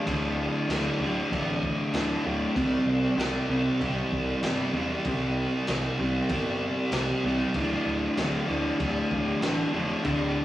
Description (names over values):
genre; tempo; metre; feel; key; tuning
garage rock duo or trio; 96 BPM; 4/4; straight; unclear; A4 = 435 Hz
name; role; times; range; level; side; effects
fuzz guitar; riff; 0.0-10.4 s; D2 to C4; -26 LUFS; equal; distortion
fuzz picked electric bass; bass; 0.1-10.4 s; D1 to C2; -33 LUFS; equal; overdrive
crunchy breakbeat drum kit; drums; 0.1-10.2 s; crash cymbal, kick drum, snare drum; -33 LUFS; equal; none
room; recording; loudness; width
light reverb; rough rehearsal-room recording, warm saturation, studio reverb; -24 LUFS; side -14 dB against mid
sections
0.0-10.4 A section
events
none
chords
0.0 D5; 2.6 C5; 7.6 D5